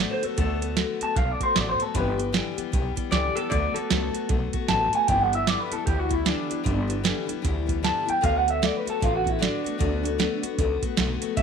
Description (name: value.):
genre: rockabilly.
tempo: 153 BPM.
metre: 4/4.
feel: swing 62% on 8ths.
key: D major.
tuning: A4 = 440 Hz.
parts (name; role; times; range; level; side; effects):
electric guitar through a small old amp; melody; 0.0-11.4 s; D4 to A5; -26 LUFS; right 1 dB; phaser, tape echo.
picked steel-string acoustic guitar; accompaniment; 0.0-11.4 s; G2 to G4; -29 LUFS; left 11 dB; none.
upright bass; bass; 0.0-11.4 s; G1 to D2; -28 LUFS; equal; none.
soft vintage rhythm box; drums; 0.2-11.4 s; hi-hat, kick drum, snare drum; -27 LUFS; right 4 dB; overdrive.
room: light reverb, digital ambience.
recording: 1960s-style stereo.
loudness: -22 LUFS.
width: side -6 dB against mid.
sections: 0.0-11.4 A section.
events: none.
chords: 0.0 D6; 1.9 G6; 3.5 D6; 5.1 G6; 8.2 D6.